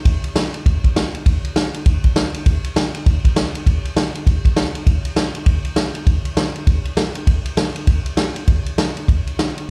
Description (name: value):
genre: rock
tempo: 199 BPM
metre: 4/4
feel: swing 61% on 8ths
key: none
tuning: none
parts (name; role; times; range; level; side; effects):
- vintage drum kit; drums; 0.1-9.6 s; kick drum, ride cymbal, snare drum; -18 LUFS; equal; none
room: light reverb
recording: live gig heard through the venue's PA, club reverb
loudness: -18 LUFS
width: mono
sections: 0.0-4.9 A section; 4.9-9.7 B section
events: none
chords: none